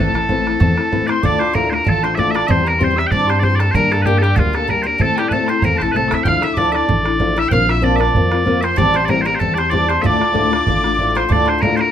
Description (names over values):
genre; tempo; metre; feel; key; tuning
celtic folk, Celtic reel; 191 BPM; 4/4; swing 55% on 8ths; D minor; A4 = 440 Hz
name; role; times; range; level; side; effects
loud bright bagpipes; melody; 0.0-11.9 s; F4 to G5; -18 LUFS; equal; none
Irish bouzouki; second line; 0.0-11.9 s; F3 to F4; -25 LUFS; right 7 dB; none
wooden whistle; second line; 0.0-11.9 s; F5 to F6; -25 LUFS; left 3 dB; none
fingerpicked old ladder-braced acoustic guitar; accompaniment; 0.0-11.9 s; D2 to Bb4; -20 LUFS; left 5 dB; none
upright bass; bass; 0.0-11.9 s; A1 to A2; -21 LUFS; equal; none
bodhran; percussion; 0.2-11.9 s; none; -22 LUFS; right 2 dB; none
room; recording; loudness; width
moderate studio reverb, RT60 0.5 s; minimal, uncompressed stereo recording; -13 LUFS; side -9 dB against mid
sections
0.0-1.2 A section; 1.2-11.3 B section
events
none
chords
0.0 Am; 1.2 Dm; 2.5 C/E; 3.7 Gm; 5.0 Am; 6.3 Dmadd9; 7.5 Bbsus2; 8.8 Am7; 10.0 Dm